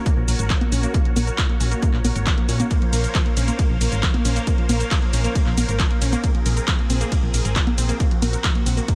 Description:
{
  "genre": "uplifting trance",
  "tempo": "136 BPM",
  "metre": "4/4",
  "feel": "straight",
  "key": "Bb minor",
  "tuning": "A4 = 440 Hz",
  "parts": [
    { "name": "filtered supersaw swell", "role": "sustained chords", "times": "0.0-8.9 s", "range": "Bb3 to F5", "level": "-34 LUFS", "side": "equal", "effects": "sidechain pumping" },
    { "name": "unison pluck", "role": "arpeggios", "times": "0.1-8.9 s", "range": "F3 to Bb4", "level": "-30 LUFS", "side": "equal", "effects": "sidechain pumping, tape echo" },
    { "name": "electronic kick drum", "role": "drums", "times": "0.1-8.9 s", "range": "none", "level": "-23 LUFS", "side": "equal", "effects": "studio reverb" },
    { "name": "punchy analog drum machine", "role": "drums", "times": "0.1-8.9 s", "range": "congas, handclaps, hi-hat, ride cymbal, shaker", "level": "-28 LUFS", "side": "equal", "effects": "sidechain pumping on hats, studio reverb, sidechain pumping on perc, sidechain pumping on cymbals" },
    { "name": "solid FM bass", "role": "bass", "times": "0.2-8.8 s", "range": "Ab1 to Bb2", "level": "-25 LUFS", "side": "equal", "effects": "sidechain pumping" }
  ],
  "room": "little or no reverb",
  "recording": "none",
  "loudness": "-20 LUFS",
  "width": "mono",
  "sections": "0.0-8.9 A section",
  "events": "none",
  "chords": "0.0 Gb; 2.7 Bbmadd9; 6.2 Abadd9"
}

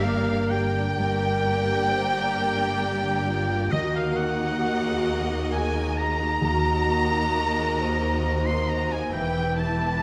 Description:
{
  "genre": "cinematic",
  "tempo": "66 BPM",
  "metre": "3/4",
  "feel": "rubato",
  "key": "unclear",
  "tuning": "A4 = 439 Hz",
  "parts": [
    { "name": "warm studio violin section", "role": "melody", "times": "0.0-10.0 s", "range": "Eb5 to C6", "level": "-33 LUFS", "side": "equal", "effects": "none" },
    { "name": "clear oboe", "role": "second line", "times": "0.0-10.0 s", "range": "Eb5 to C6", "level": "-34 LUFS", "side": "equal", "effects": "none" },
    { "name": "rich studio violin section", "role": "second line", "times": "0.0-10.0 s", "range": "G4 to Eb5", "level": "-38 LUFS", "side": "equal", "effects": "none" },
    { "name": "silver concert flute", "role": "second line", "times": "0.0-10.0 s", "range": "Eb5 to C6", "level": "-34 LUFS", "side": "equal", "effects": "none" },
    { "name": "dark grand piano", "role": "accompaniment", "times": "0.0-10.0 s", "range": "Eb2 to Bb4", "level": "-34 LUFS", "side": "equal", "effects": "none" },
    { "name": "warm studio viola section", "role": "accompaniment", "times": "0.0-10.0 s", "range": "E3 to G4", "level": "-35 LUFS", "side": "equal", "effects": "none" },
    { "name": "mellow French horn section", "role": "sustained chords", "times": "0.0-10.0 s", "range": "F4 to C5", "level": "-33 LUFS", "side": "equal", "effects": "none" },
    { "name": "concert harp", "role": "arpeggios", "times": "0.0-10.0 s", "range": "G2 to Bb5", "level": "-38 LUFS", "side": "equal", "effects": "none" },
    { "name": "warm studio cello section", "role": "bass", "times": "0.0-10.0 s", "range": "Eb2 to G2", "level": "-35 LUFS", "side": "equal", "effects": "none" },
    { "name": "warm studio double bass section", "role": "bass", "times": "0.0-10.0 s", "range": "E1 to Eb2", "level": "-33 LUFS", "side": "equal", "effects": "none" }
  ],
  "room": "moderate scoring stage reverb, RT60 1.8 s",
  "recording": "none",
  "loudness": "-24 LUFS",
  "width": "mono",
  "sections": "0.0-10.0 A section",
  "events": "none",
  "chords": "0.0 Gmadd9; 3.7 Ebm; 9.1 Em"
}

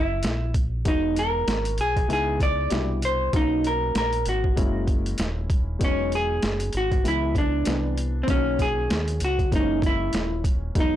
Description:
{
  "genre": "hip hop, jazz-hop",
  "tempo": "97 BPM",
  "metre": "4/4",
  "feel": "swing 58% on 16ths",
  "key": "unclear",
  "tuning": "A4 = 440 Hz",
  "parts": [
    { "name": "vintage hollow-body jazz guitar", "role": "melody", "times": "0.0-11.0 s", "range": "C4 to D5", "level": "-25 LUFS", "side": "equal", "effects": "plate reverb" },
    { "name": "deep dub fingered electric bass", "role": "bass", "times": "0.0-11.0 s", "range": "D#1 to D#2", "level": "-28 LUFS", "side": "equal", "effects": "none" },
    { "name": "boom bap sampler-style drum kit", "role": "drums", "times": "0.2-10.9 s", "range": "hi-hat, kick drum, snare drum", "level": "-25 LUFS", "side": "equal", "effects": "overdrive" },
    { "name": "warm grand piano", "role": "accompaniment", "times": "0.8-11.0 s", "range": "B2 to F#4", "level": "-31 LUFS", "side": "left 4 dB", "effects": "plate reverb" }
  ],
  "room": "light reverb",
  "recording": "blown-out, overdriven recording, overdrive",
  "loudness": "-21 LUFS",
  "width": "side -12 dB against mid",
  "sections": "0.0-11.0 A section",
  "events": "break 0.0-0.9",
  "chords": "0.0 F#7; 0.9 Emaj7; 2.1 C#m7; 2.7 Cmaj9; 3.3 Bmaj9; 4.6 F#9; 5.8 Emaj7; 7.0 C#m7; 7.7 Cmaj9; 8.3 Bmaj9; 9.5 F#9"
}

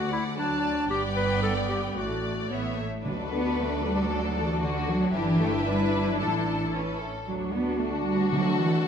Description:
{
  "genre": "quick classical-period movement for symphony orchestra",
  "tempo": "114 BPM",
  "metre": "2/4",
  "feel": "straight",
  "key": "D major",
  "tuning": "A4 = 441 Hz",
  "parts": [
    { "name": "rich studio violin section", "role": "melody", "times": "0.0-8.9 s", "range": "F#4 to A5", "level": "-34 LUFS", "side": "left 4 dB", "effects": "none" },
    { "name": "clear clarinet", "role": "second line", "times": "0.0-2.5 s", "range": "D4 to B4", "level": "-29 LUFS", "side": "left 1 dB", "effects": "none" },
    { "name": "rich chamber violin section", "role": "second line", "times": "0.0-8.9 s", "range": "A4 to A5", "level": "-36 LUFS", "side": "left 2 dB", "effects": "none" },
    { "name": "rich studio viola section", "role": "accompaniment", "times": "0.0-8.9 s", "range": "F#3 to F#4", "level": "-32 LUFS", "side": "equal", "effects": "none" },
    { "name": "rich chamber double bass section", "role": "bass", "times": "0.0-8.9 s", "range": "G1 to D2", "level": "-34 LUFS", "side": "right 3 dB", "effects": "none" },
    { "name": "warm chamber cello section", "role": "bass", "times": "0.0-8.9 s", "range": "D2 to B3", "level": "-29 LUFS", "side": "right 2 dB", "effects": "none" },
    { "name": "timpani", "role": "percussion", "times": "3.1-3.8, 8.3-8.9 s", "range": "D3", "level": "-34 LUFS", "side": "equal", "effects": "none" },
    { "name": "dark French horn section", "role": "sustained chords", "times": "3.3-8.9 s", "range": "C#4 to A4", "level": "-32 LUFS", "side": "left 4 dB", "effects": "none" }
  ],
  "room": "moderate scoring stage reverb, RT60 2.0 s",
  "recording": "none",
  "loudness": "-24 LUFS",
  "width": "side -7 dB against mid",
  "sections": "0.0-3.1 A section; 3.1-8.9 A section",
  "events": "none",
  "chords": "0.0 D; 0.9 G; 2.0 D/A; 2.5 A; 3.1 D; 5.1 Em7/G; 6.2 Asus4; 6.7 A; 7.3 D"
}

